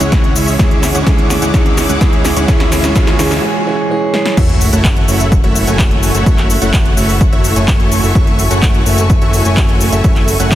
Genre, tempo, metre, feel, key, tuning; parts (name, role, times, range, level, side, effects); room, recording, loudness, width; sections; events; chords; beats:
EDM, festival progressive house; 127 BPM; 4/4; straight; F# minor; A4 = 440 Hz
clear concert grand piano; accompaniment; 0.0-4.4 s; E3 to G#4; -18 LUFS; right 2 dB; sidechain pumping, digital delay
rich studio string section; sustained chords; 0.0-10.6 s; G#4 to D6; -23 LUFS; left 1 dB; sidechain pumping
dense compressed supersaw; riff; 0.0-10.6 s; G#3 to G#5; -17 LUFS; right 1 dB; sidechain pumping, digital delay
fat analog bass; bass; 0.0-10.6 s; F#1 to D2; -17 LUFS; equal; sidechain pumping
big-room dance drum kit; drums; 0.0-10.6 s; crash cymbal, handclaps, hi-hat, shaker, snare drum; -19 LUFS; equal; overdrive
riser and sub drop; sound effects; 0.2-6.3 s; -23 LUFS; equal
electronic kick drum; drums; 0.1-10.6 s; -12 LUFS; equal; overdrive
light reverb; dense, heavily limited modern master; -9 LUFS; side -13 dB against mid
0.0-4.4 A section; 4.4-10.6 B section
build-up 0.0-4.4; drum fill 0.0-3.4, 4.1; riser 0.2-3.4; break 3.4-4.4; drop 4.4-10.6; impact 4.4-6.3
0.0 C#m; 0.6 D; 4.4 F#m7
0.12 | 0.59 1.07 1.54 2.01 | 2.48 2.96 3.43 3.90 | 4.37 4.85 5.32 5.79 | 6.26 6.74 7.21 7.68 | 8.15 8.63 9.10 9.57 | 10.04 10.52